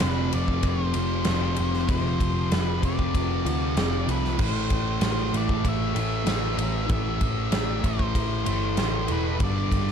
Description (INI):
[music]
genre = rock, shoegaze and dream pop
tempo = 96 BPM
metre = 4/4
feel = straight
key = A minor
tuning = A4 = 440 Hz
[part]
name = octave-fuzz lead guitar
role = melody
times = 0.0-9.9 s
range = B4 to E5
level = -33 LUFS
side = left 1 dB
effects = distortion, tape echo
[part]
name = thick fuzz guitar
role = riff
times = 0.0-9.9 s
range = F2 to A3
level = -27 LUFS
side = equal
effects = distortion, lush chorus
[part]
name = vintage muted picked electric bass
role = bass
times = 0.0-9.9 s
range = E1 to D2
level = -28 LUFS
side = equal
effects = none
[part]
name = big rock drum kit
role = drums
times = 0.0-9.9 s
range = crash cymbal, kick drum, ride cymbal, snare drum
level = -28 LUFS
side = equal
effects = none
[sound]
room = small room ambience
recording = dark, warm production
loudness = -22 LUFS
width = side -7 dB against mid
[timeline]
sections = 0.0-9.9 A section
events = none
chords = 0.0 F5; 4.4 Am; 9.4 G5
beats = 0.01 0.63 1.26 | 1.88 2.51 3.14 3.76 | 4.39 5.02 5.64 6.27 | 6.90 7.52 8.15 8.77 | 9.40